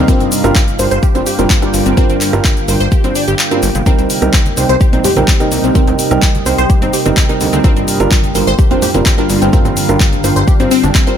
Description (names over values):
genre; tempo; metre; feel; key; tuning
progressive house; 127 BPM; 4/4; straight; unclear; A4 = 439 Hz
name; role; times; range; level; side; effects
evolving wavetable pad; sustained chords; 0.0-11.2 s; C3 to G4; -19 LUFS; equal; ensemble chorus, built-in reverb, sidechain pumping
wide unison pluck; arpeggios; 0.0-11.1 s; C3 to C5; -18 LUFS; left 2 dB; analog chorus, sidechain pumping, tape echo
felt-muted upright piano; stabs; 0.0-11.2 s; G2 to C5; -16 LUFS; right 3 dB; sidechain pumping, tape echo
fat analog bass; bass; 0.0-10.9 s; F1 to G2; -17 LUFS; left 1 dB; sidechain pumping
deep house drum kit; drums; 0.1-11.2 s; handclaps, hi-hat, shaker; -18 LUFS; left 1 dB; none
electronic kick drum; drums; 0.1-11.0 s; none; -12 LUFS; equal; none
congas; percussion; 3.9-10.9 s; none; -22 LUFS; right 2 dB; sidechain pumping on perc
room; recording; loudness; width
little or no reverb; none; -9 LUFS; side -9 dB against mid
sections
0.0-11.2 A section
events
kick drops out 3.4-3.9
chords
0.1 Gm7; 3.9 Cm7; 7.6 Gm7